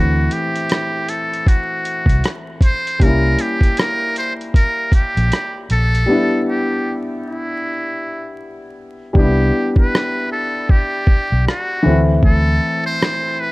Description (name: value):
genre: lo-fi hip hop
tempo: 78 BPM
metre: 4/4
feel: swing 60% on 16ths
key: C major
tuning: A4 = 440 Hz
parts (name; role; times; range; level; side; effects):
- trumpet with metal mute; melody; 0.0-13.5 s; E4 to C5; -21 LUFS; equal; low-pass filter
- felt-muted upright piano; accompaniment; 0.0-13.5 s; E3 to E4; -21 LUFS; left 1 dB; cassette tape, low-pass filter
- vintage muted fingered electric bass; bass; 0.0-12.6 s; Bb1 to D2; -16 LUFS; equal; none
- lo-fi sampler-style drum kit; drums; 0.3-13.2 s; hi-hat, kick drum, rim click; -15 LUFS; equal; none
room: light reverb, studio ambience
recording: vinyl crackle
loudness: -15 LUFS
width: side -22 dB against mid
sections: 0.0-9.2 A section; 9.2-13.5 B section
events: break 6.1-9.2; hi-hats muted 9.2-13.5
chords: 0.0 D9 (rootless); 3.0 C7b9 (rootless); 6.1 G6; 9.2 Cmaj9; 11.8 Dsus2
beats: 0.69 1.46 2.23 | 3.00 3.77 4.54 5.31 | 6.08 6.85 7.62 8.38 | 9.15 9.92 10.69 11.46 | 12.23 13.00